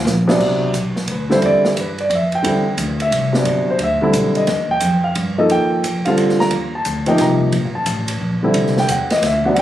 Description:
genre	modal jazz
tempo	177 BPM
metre	3/4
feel	swing 64% on 8ths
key	unclear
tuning	A4 = 440 Hz
part	upright bass	bass	0.0-9.6 s	Eb1 to G2	-21 LUFS	left 1 dB	none
part	open jazz drum kit	drums	0.1-9.6 s	crash cymbal, hi-hat, kick drum, ride cymbal, snare drum	-24 LUFS	right 2 dB	none
part	warm concert grand piano	accompaniment	0.3-9.6 s	C3 to Bb5	-16 LUFS	equal	none
room	light reverb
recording	recorded on a phone in the room, club reverb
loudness	-15 LUFS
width	side -12 dB against mid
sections	0.4-9.6 A section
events	drum fill 0.0-0.4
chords	0.4 Cmaj9; 4.5 Ebmaj9; 8.6 Cmaj9

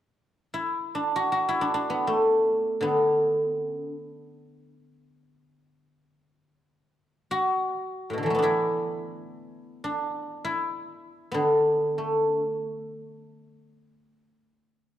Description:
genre	chinese traditional, Chinese solo plucked strings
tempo	free time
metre	none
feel	none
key	D gong mode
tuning	A4 = 443 Hz
part	guzheng	solo	0.5-15.0 s	A2 to F#4	-24 LUFS	equal	none
room	moderate scoring stage reverb, RT60 1.8 s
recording	dark, warm production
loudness	-24 LUFS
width	side -12 dB against mid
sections	0.0-15.0 A section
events	none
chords	none

